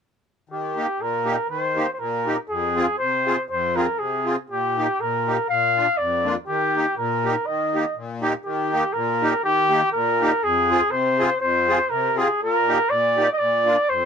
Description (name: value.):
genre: alpine folk.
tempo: 121 BPM.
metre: 2/4.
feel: swing 54% on 8ths.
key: Eb major.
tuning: A4 = 440 Hz.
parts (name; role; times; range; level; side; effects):
warm flugelhorn; melody; 0.5-14.1 s; G4 to F5; -20 LUFS; equal; none.
musette accordion; accompaniment; 0.5-14.1 s; F2 to Ab4; -25 LUFS; left 1 dB; none.
room: light reverb.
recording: close, detailed microphones.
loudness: -19 LUFS.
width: side -7 dB against mid.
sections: 0.5-8.5 A section; 8.5-14.1 A section.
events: none.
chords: 0.5 Eb; 2.5 Fm; 4.5 Eb/Bb; 5.5 Bb; 6.5 Eb; 10.4 Fm; 12.4 Eb/Bb; 13.4 Bb.